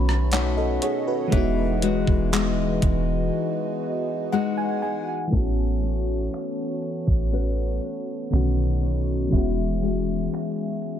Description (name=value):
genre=contemporary R&B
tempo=60 BPM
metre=4/4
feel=straight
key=E major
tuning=A4 = 440 Hz
part: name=FM electric piano with soft pad layer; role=accompaniment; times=0.0-11.0 s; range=D3 to G#5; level=-27 LUFS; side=equal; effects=chorus, analog delay
part: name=mellow French horn section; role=sustained chords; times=0.0-11.0 s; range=A3 to E5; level=-32 LUFS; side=right 3 dB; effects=sidechain pumping
part: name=nylon-string guitar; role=arpeggios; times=0.0-11.0 s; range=B2 to B4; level=-29 LUFS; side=left 9 dB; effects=analog delay
part: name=soft 808-style bass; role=bass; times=0.0-10.3 s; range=E1 to B1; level=-24 LUFS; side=equal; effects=none
part: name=large celesta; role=texture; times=0.0-1.8 s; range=B5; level=-42 LUFS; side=left 2 dB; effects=none
part: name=crisp 8-bit digital drum machine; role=drums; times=0.1-11.0 s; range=finger snaps, handclaps, hi-hat, kick drum, rim click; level=-24 LUFS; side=right 1 dB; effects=none
room=light reverb, small room ambience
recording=echo-heavy mix, low-pass filter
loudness=-22 LUFS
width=side -10 dB against mid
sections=0.0-5.3 A section; 5.3-11.0 B section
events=break 3.3-5.3; FM electric piano fill 3.8-5.3; filter sweep 5.3-11.0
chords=0.0 B9; 1.3 Emaj9; 5.3 A69; 8.3 B9; 9.3 E69